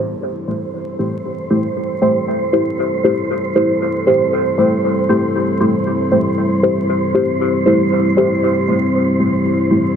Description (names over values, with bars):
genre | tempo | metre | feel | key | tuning
techno | 117 BPM | 4/4 | swing 55% on 16ths | A minor | A4 = 440 Hz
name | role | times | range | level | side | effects
dark analog pad | sustained chords | 0.1-10.0 s | G3 to A4 | -19 LUFS | equal | chorus
deep mellow chord stab | stabs | 0.0-9.9 s | A3 to C5 | -16 LUFS | equal | chorus, phaser, dub echo
wind-like tuned noise texture | texture | 0.2-10.0 s | C5 | -24 LUFS | right 2 dB | built-in reverb
room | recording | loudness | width
moderate huge ambient reverb, RT60 5.3 s | vinyl crackle | -14 LUFS | side -8 dB against mid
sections
0.0-10.0 A section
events
filter sweep on synth stab 0.0-10.0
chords
0.0 Am7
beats
0.22 0.73 | 1.25 1.76 2.27 2.78 | 3.30 3.81 4.32 4.83 | 5.35 5.86 6.37 6.89 | 7.40 7.91 8.43 8.94 | 9.45